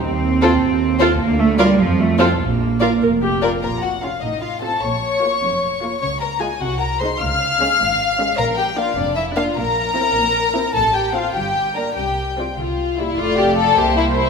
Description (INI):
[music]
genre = quick classical-period movement for string orchestra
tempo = 101 BPM (dotted quarters)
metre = 6/8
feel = straight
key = Bb major, Bb minor from 3.6 s, F major from 8.4 s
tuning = A4 = 440 Hz
[part]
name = warm symphonic cello section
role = bass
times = 0.0-14.3 s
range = C2 to C4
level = -22 LUFS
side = right 4 dB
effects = none
[part]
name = warm symphonic double bass section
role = bass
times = 0.0-14.3 s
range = F1 to F2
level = -24 LUFS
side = right 2 dB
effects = none
[part]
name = warm symphonic violin section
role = melody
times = 0.4-14.3 s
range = C5 to F6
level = -21 LUFS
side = left 4 dB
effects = none
[part]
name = rich studio violin section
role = second line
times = 0.4-14.3 s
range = C4 to F5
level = -21 LUFS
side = left 3 dB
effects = none
[part]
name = warm chamber viola section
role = accompaniment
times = 0.4-14.3 s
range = G3 to D5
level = -23 LUFS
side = right 1 dB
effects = none
[sound]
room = wet concert hall reverb, RT60 2.0 s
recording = minimal, uncompressed stereo recording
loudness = -16 LUFS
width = side -5 dB against mid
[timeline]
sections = 0.0-3.6 A section; 3.6-13.2 B section; 13.2-14.3 C section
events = none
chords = 0.0 F7(no3)/Eb; 1.2 Bb/D; 1.8 F; 2.4 Bb5; 3.6 Bbm; 4.2 F/A; 4.8 Bbm; 6.0 Db; 6.6 Ab/C; 7.2 Db; 8.4 Bb; 9.6 C7/Bb; 10.8 F/A; 11.4 Gm; 12.0 Csus4; 12.6 C; 13.2 F; 13.8 C7